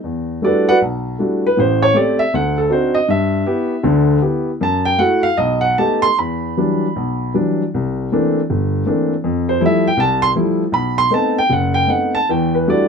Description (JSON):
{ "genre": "solo jazz", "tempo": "157 BPM", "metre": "4/4", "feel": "swing 67% on 8ths, rubato", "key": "G major, E minor from 6.2 s", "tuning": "A4 = 439 Hz", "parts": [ { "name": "dark baby grand piano", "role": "solo", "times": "0.0-12.9 s", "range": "F#1 to C6", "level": "-14 LUFS", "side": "equal", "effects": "none" } ], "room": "light reverb", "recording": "minimal, uncompressed stereo recording", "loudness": "-14 LUFS", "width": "side -6 dB against mid", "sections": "0.0-6.2 A section; 6.2-12.9 A section", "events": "grand piano solo 0.0-12.9", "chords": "0.0 Em11; 1.6 Am7; 2.3 D7b9; 3.1 G6; 4.6 F#m7; 5.4 B7b13; 6.2 Em9; 7.7 C13; 9.2 Fmaj9; 10.7 B7b9; 12.3 Em11" }